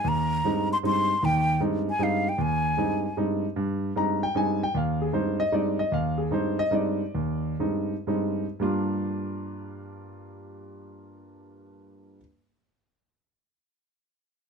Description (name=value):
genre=jazz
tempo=107-153 BPM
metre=3/4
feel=swing 67% on 8ths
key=unclear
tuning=A4 = 442 Hz
part: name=breathy hollow concert flute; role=melody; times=0.0-3.2 s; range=F5 to C6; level=-26 LUFS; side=left 1 dB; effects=none
part: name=clear concert grand piano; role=accompaniment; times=0.0-12.2 s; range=Eb2 to Bb5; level=-25 LUFS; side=equal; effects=none
room=light reverb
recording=dark, warm production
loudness=-24 LUFS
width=side -5 dB against mid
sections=0.0-3.6 A section; 3.6-8.6 B section; 8.6-12.0 C section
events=slowing down 5.9-8.6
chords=0.0 Ab; 8.6 Gm7